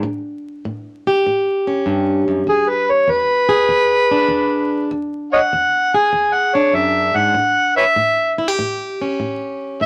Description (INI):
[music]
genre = acoustic country blues, solo or duo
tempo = 98 BPM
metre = 4/4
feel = swing 67% on 8ths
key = E mixolydian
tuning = A4 = 439 Hz
[part]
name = fingerpicked plugged-in swing-style acoustic guitar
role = accompaniment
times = 0.0-9.9 s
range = E2 to G#4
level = -22 LUFS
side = equal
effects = none
[part]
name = overdriven harmonica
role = melody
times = 2.5-9.9 s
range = G#4 to G#5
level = -17 LUFS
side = equal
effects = none
[sound]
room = moderate small room reverb, RT60 0.6 s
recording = vinyl crackle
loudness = -17 LUFS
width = mono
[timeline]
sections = 0.0-9.9 A section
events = harmonica solo 0.0-9.9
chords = 0.0 A7; 2.5 E7; 7.4 A7